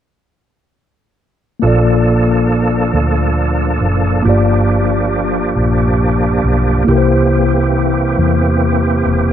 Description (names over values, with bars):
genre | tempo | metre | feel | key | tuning
gospel | 46 BPM (dotted quarters) | 6/8 | straight | Bb major | A4 = 440 Hz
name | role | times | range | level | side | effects
mellow tine electric piano | accompaniment | 1.6-9.3 s | G2 to D5 | -15 LUFS | left 2 dB | slow stereo tremolo
bright tonewheel organ | sustained chords | 1.6-9.3 s | E3 to A4 | -17 LUFS | right 3 dB | chorus vibrato, fast rotary speaker
hollow-body short-scale fingered electric bass | bass | 1.6-9.3 s | E1 to E2 | -16 LUFS | equal | none
room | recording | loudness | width
light reverb | worn, warbling old tape, cassette tape, warbly pitch drift | -11 LUFS | side -10 dB against mid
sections
1.6-9.3 A section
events
none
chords
1.6 Bbmaj7; 4.3 Gm7; 6.9 C7